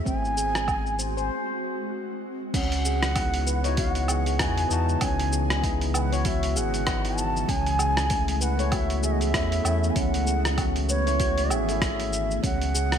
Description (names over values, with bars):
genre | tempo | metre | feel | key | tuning
organic downtempo | 97 BPM | 4/4 | swing 58% on 16ths | C# minor | A4 = 442 Hz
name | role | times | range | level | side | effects
breathy mellow bansuri | melody | 0.0-13.0 s | C#5 to A5 | -30 LUFS | right 1 dB | ping-pong delay
ethereal airy pad | sustained chords | 0.0-13.0 s | C#3 to D#5 | -34 LUFS | right 1 dB | ensemble chorus, built-in reverb, sidechain pumping
handpan | arpeggios | 0.1-13.0 s | B#3 to C#5 | -32 LUFS | right 3 dB | ping-pong delay
warm sub bass | bass | 0.1-13.0 s | G#1 to E2 | -27 LUFS | equal | sidechain pumping
dusty soul sampler-style drum kit | drums | 0.1-13.0 s | crash cymbal, hi-hat, rim click, shaker, woodblock | -30 LUFS | right 1 dB | overdrive, gated reverb
electronic kick drum | drums | 0.1-12.6 s | none | -29 LUFS | equal | none
bell-like tine electric piano | accompaniment | 3.2-12.4 s | A3 to G#4 | -32 LUFS | left 5 dB | sidechain pumping, ping-pong delay
room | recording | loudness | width
moderate lush hall reverb, RT60 2.6 s | bright 1980s-style digital production | -22 LUFS | side -8 dB against mid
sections
0.0-2.5 A section; 2.5-13.0 B section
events
break 1.3-2.5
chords
0.1 G#7; 2.5 C#m11; 7.5 B9sus4/C#; 12.4 C#madd9